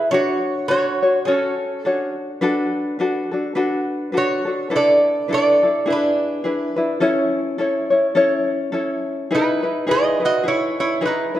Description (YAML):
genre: hawaiian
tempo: 104 BPM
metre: 4/4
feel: swing 58% on 8ths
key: A major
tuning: A4 = 440 Hz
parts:
  - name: lap resonator guitar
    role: melody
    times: 0.0-11.4 s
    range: C#4 to D#5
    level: -19 LUFS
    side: right 2 dB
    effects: none
  - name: tenor ukulele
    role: accompaniment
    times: 0.0-11.4 s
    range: C#4 to E5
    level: -19 LUFS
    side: left 2 dB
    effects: none
room: wet recital hall reverb, RT60 1.7 s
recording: dark, warm production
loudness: -17 LUFS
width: side -12 dB against mid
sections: 0.0-9.3 A section; 9.3-11.4 B section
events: none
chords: 0.1 Dmaj7; 2.4 Bm7; 4.7 E7sus4; 5.9 E7; 7.0 A; 9.3 Emaj7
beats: | 0.12 0.69 1.27 1.85 | 2.42 3.00 3.57 4.15 | 4.72 5.29 5.87 6.44 | 7.01 7.59 8.16 8.73 | 9.31 9.88 10.45 11.03